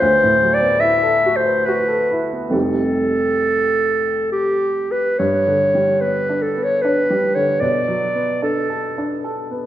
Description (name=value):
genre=classical, impressionist duo for clarinet and grand piano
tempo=66-77 BPM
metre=3/4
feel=rubato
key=unclear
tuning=A4 = 440 Hz
part: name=warm clarinet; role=melody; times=0.0-9.2 s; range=G4 to E5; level=-17 LUFS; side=equal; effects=none
part: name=warm baby grand piano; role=accompaniment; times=0.0-9.7 s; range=F1 to B4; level=-22 LUFS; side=right 1 dB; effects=none
room=wet recital hall reverb, RT60 1.5 s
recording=recorded in a church or concert hall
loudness=-16 LUFS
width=side -12 dB against mid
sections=0.0-5.2 A section; 5.2-9.7 B section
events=none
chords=0.0 D69; 2.5 F9; 5.2 G; 7.6 Bm7